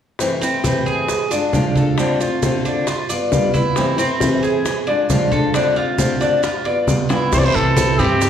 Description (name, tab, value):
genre	latin, Cuban son and guajira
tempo	135 BPM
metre	4/4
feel	straight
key	C major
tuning	A4 = 442 Hz
part	nylon-string guitar	accompaniment	0.2-8.3 s	Bb2 to F4	-20 LUFS	left 2 dB	none
part	bongos	percussion	0.2-8.3 s	none	-26 LUFS	left 2 dB	none
part	congas	percussion	0.2-8.3 s	none	-22 LUFS	right 1 dB	none
part	maracas	percussion	0.2-8.3 s	none	-31 LUFS	right 6 dB	none
part	Cuban tres	arpeggios	0.4-8.3 s	C4 to D5	-20 LUFS	equal	none
part	breathy trumpet	melody	7.3-8.3 s	G4 to D5	-18 LUFS	right 1 dB	none
part	upright bass	bass	7.3-8.3 s	C2 to G2	-18 LUFS	right 1 dB	none
part	guiro	percussion	7.3-8.3 s	none	-29 LUFS	right 6 dB	none
room	wet recital hall reverb, RT60 1.3 s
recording	recorded in a church or concert hall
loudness	-15 LUFS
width	side -9 dB against mid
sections	0.2-7.3 A section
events	drum fill 6.9-7.3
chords	0.2 C6; 1.1 Bb7; 2.0 Dm7; 2.9 G7; 3.8 C6; 4.7 Bb7; 5.5 Dm7; 6.4 G7; 7.3 C6